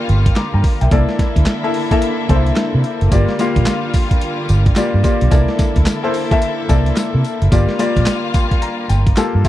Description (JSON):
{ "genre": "R&B, new jack swing", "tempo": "109 BPM", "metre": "4/4", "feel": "swing 62% on 16ths", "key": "G dorian", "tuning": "A4 = 442 Hz", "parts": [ { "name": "clear concert grand piano", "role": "accompaniment", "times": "0.0-9.5 s", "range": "Bb3 to D6", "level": "-19 LUFS", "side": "left 3 dB", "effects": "none" }, { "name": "warm studio string section", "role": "sustained chords", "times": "0.0-9.5 s", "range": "D3 to A4", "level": "-24 LUFS", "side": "equal", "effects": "none" }, { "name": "vintage muted fingered electric bass", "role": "bass", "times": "0.1-9.4 s", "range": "F#1 to C3", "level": "-14 LUFS", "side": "equal", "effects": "none" }, { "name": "dusty soul sampler-style drum kit", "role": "drums", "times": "0.1-9.5 s", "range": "handclaps, hi-hat, kick drum, snare drum, tambourine", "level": "-16 LUFS", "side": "equal", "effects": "none" } ], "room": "little or no reverb", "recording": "dry, close 1970s-style studio recording", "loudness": "-13 LUFS", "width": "side -14 dB against mid", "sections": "0.0-9.5 A section", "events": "grand piano fill 8.1-9.5", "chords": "0.0 Gm7; 0.9 C13; 3.1 Gm7; 5.3 C13; 7.5 Gm7", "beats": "0.36 | 0.91 1.46 2.01 2.56 | 3.12 3.67 4.22 4.77 | 5.32 5.87 6.42 6.97 | 7.52 8.07 8.62 9.17" }